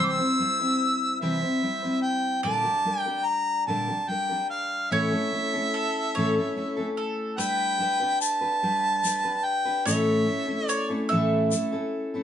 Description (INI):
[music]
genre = acoustic folk duo or small band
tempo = 49 BPM (dotted quarters)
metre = 6/8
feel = straight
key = unclear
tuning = A4 = 439 Hz
[part]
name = warm harmonica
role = melody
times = 0.0-11.1 s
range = E5 to E6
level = -26 LUFS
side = equal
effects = none
[part]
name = bowl-back mandolin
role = second line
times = 0.0-12.2 s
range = A4 to E5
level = -31 LUFS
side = right 4 dB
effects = none
[part]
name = picked steel-string acoustic guitar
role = accompaniment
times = 0.0-12.2 s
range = A2 to C5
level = -27 LUFS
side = left 1 dB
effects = none
[part]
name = tube shaker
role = percussion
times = 7.4-11.7 s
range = none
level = -31 LUFS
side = left 5 dB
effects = none
[sound]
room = wet studio reverb, RT60 0.5 s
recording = band playing live in one room, nothing above 10.7 kHz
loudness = -23 LUFS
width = side -9 dB against mid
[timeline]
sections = 0.0-7.4 A section; 7.4-12.2 B section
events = none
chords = 0.0 C; 2.5 Gm/Bb; 4.9 A; 7.4 G; 9.9 A